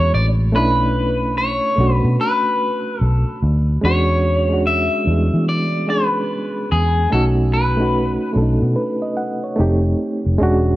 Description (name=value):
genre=R&B, neo-soul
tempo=73 BPM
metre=4/4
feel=swing 64% on 16ths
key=unclear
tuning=A4 = 441 Hz
part: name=electric guitar at the edge of break-up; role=melody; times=0.0-8.3 s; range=G#4 to E5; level=-20 LUFS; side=left 1 dB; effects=phaser, slapback echo
part: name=reed electric piano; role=accompaniment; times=0.0-10.8 s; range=G3 to F#5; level=-20 LUFS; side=right 1 dB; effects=overdrive, medium tremolo
part: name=vintage muted fingered electric bass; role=bass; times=0.0-10.8 s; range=E1 to E3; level=-18 LUFS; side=equal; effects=none
room=light reverb, digital ambience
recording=worn, warbling old tape, cassette tape, warbly pitch drift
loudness=-15 LUFS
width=side -16 dB against mid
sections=0.0-3.8 A section; 3.8-10.8 B section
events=none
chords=0.0 E13; 0.5 Bm11; 3.8 E13; 7.1 B9; 9.6 F9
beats=| 0.54 1.36 2.18 3.00 | 3.83 4.65 5.47 6.29 | 7.11 7.94 8.76 9.58 | 10.40